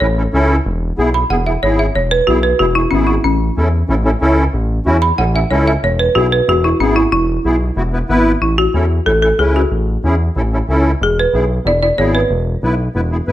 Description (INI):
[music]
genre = latin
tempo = 186 BPM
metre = 4/4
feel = straight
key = A major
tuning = A4 = 440 Hz
[part]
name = folk marimba with hard mallets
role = melody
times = 0.0-13.1 s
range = C#4 to B5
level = -15 LUFS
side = equal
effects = plate reverb
[part]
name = musette accordion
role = accompaniment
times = 0.0-13.3 s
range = B3 to B4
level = -18 LUFS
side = equal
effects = none
[part]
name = smooth gliding synth bass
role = bass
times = 0.0-13.3 s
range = E1 to E2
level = -16 LUFS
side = equal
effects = none
[sound]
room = moderate large studio reverb, RT60 0.8 s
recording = none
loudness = -12 LUFS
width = side -13 dB against mid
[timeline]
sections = 0.0-8.4 A section; 8.4-13.3 B section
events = marimba solo 0.0-8.4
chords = 0.0 A; 0.7 E; 3.2 A; 5.8 E; 8.4 A; 11.0 E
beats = 0.01 0.34 | 0.66 0.98 1.30 1.63 | 1.95 2.28 2.60 2.92 | 3.25 3.57 3.89 4.21 | 4.54 4.86 5.18 5.51 | 5.83 6.15 6.48 6.80 | 7.12 7.45 7.77 8.09 | 8.42 8.74 9.06 9.39 | 9.71 10.04 10.36 10.68 | 11.01 11.33 11.66 11.98 | 12.30 12.63 12.95 13.27